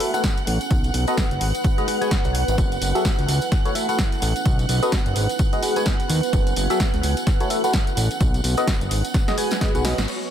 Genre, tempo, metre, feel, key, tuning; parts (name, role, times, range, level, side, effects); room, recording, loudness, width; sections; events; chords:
piano house; 128 BPM; 4/4; swing 58% on 16ths; A4 = 444 Hz
rich studio violin section; sustained chords; 0.0-10.3 s; C#5 to F#6; -29 LUFS; right 3 dB; sidechain pumping, low-pass filter
barking FM electric piano; riff; 0.0-10.0 s; F#3 to G#5; -25 LUFS; left 1 dB; phaser, cassette tape, sidechain pumping, analog delay
punchy analog drum machine; drums; 0.0-10.2 s; crash cymbal, hi-hat, snare drum, tambourine; -28 LUFS; equal
deep dark ambient pad; texture; 0.0-10.3 s; C#4 to G#5; -29 LUFS; right 3 dB; chorus, built-in reverb, sidechain pumping
tambourine; percussion; 0.1-10.3 s; -40 LUFS; left 1 dB
electronic kick drum; drums; 0.2-9.7 s; -21 LUFS; equal
fat analog bass; bass; 0.5-10.1 s; F#1 to D#2; -22 LUFS; equal; sidechain pumping
digital ambience; echo-heavy mix; -18 LUFS; side -10 dB against mid
0.0-10.1 A section
drum fill 9.1-10.1; band accent 10.0
0.0 A69; 0.7 B7; 1.4 G#m7; 2.6 F#m9; 3.5 A69; 4.5 B7; 5.2 G#m7; 6.3 F#m9; 7.3 A69; 8.2 B7; 8.9 G#m7